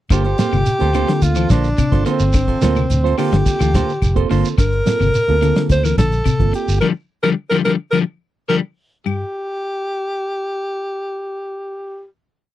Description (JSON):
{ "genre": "afrobeat", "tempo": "107 BPM", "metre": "4/4", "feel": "straight", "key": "G minor", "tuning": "A4 = 440 Hz", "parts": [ { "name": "breathy alto saxophone", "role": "melody", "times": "0.1-12.1 s", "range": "C4 to C5", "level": "-20 LUFS", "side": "equal", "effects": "none" }, { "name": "electric guitar at the edge of break-up", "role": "arpeggios", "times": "0.1-9.2 s", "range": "G2 to G3", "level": "-20 LUFS", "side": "left 6 dB", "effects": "none" }, { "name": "semi-hollow electric guitar", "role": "stabs", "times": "0.1-4.5 s", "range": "Bb3 to C5", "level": "-24 LUFS", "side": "right 9 dB", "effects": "spring reverb" }, { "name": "fingered electric bass", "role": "bass", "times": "0.1-6.8 s", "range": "F1 to D2", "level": "-18 LUFS", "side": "equal", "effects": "none" }, { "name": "warm soul drum kit", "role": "drums", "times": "0.1-6.7 s", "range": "hi-hat, kick drum, snare drum", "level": "-18 LUFS", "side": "equal", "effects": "none" }, { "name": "claves", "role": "percussion", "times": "0.1-9.2 s", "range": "none", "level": "-32 LUFS", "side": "left 22 dB", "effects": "none" }, { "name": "shekere", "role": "percussion", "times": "0.1-6.8 s", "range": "none", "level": "-24 LUFS", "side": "right 3 dB", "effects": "none" }, { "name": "reed electric piano", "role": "accompaniment", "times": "0.4-6.8 s", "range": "Bb3 to C5", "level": "-24 LUFS", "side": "right 15 dB", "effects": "none" } ], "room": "little or no reverb", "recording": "dry, close 1970s-style studio recording", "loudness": "-15 LUFS", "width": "side -14 dB against mid", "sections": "0.1-9.1 groove; 9.1-11.3 final note", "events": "band accent 6.8-9.1", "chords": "0.1 Gm11; 9.1 N.C." }